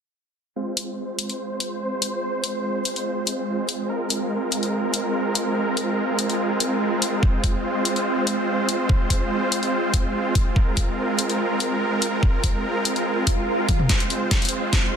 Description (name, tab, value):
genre	heavy wobble dubstep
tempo	144 BPM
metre	4/4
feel	half-time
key	F minor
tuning	A4 = 438 Hz
part	supersaw chords	sustained chords	0.6-15.0 s	Ab3 to C5	-23 LUFS	right 1 dB	sidechain pumping, low-pass filter
part	big-room dance drum kit	drums	0.8-14.8 s	hi-hat, snare drum, toms	-24 LUFS	left 3 dB	high-pass filter on hats, small room ambience, high-pass filter on toms, high-pass filter on snare
part	electronic kick drum	drums	7.2-14.8 s	none	-21 LUFS	equal	small room ambience
part	swell and riser	sound effects	13.2-15.0 s	none	-30 LUFS	right 2 dB	none
room	moderate plate reverb, RT60 2.1 s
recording	dense, heavily limited modern master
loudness	-20 LUFS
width	side -7 dB against mid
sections	0.6-13.9 A section; 13.9-15.0 B section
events	filter sweep on supersaw synth 0.6-13.9; swell 13.2-13.9; drum fill 13.7, 13.9-15.0; build-up 13.9-15.0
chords	0.6 Fm